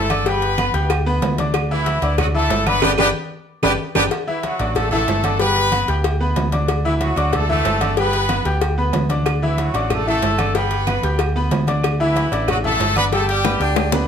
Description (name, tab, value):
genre	latin, salsa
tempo	187 BPM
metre	4/4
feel	straight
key	D major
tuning	A4 = 439 Hz
part	bright horn section	melody	0.0-14.1 s	E3 to D5	-20 LUFS	equal	none
part	bright grand piano	accompaniment	0.0-14.1 s	E3 to G6	-23 LUFS	left 2 dB	none
part	picked electric bass	bass	0.0-14.1 s	G1 to D2	-21 LUFS	right 1 dB	none
part	agogo bells and timbales	percussion	0.1-14.0 s	none	-27 LUFS	right 6 dB	none
part	claves	percussion	0.1-4.0, 9.3-13.9 s	none	-29 LUFS	right 10 dB	none
part	congas	percussion	0.1-14.1 s	none	-29 LUFS	left 2 dB	none
part	cowbell and bongos	percussion	0.1-14.0 s	none	-26 LUFS	left 8 dB	none
room	moderate studio reverb, RT60 0.8 s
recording	none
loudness	-16 LUFS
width	side -8 dB against mid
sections	0.0-4.1 A section; 4.1-14.1 A section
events	band accent 2.8-4.1; drum fill 3.5-4.1, 13.4-14.1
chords	0.3 G; 1.5 Dsus2; 2.8 G; 4.1 Dadd9; 5.4 G; 6.7 Dadd9; 8.0 G; 9.3 Dadd9; 10.5 G; 11.8 Dsus2; 13.1 G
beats	| 0.26 0.58 0.90 1.22 | 1.54 1.86 2.19 2.51 | 2.83 3.15 3.47 3.79 | 4.11 4.43 4.75 5.08 | 5.40 5.72 6.04 6.36 | 6.68 7.00 7.33 7.65 | 7.97 8.29 8.62 8.94 | 9.26 9.58 9.90 10.22 | 10.55 10.87 11.19 11.51 | 11.83 12.16 12.48 12.80 | 13.12 13.44 13.76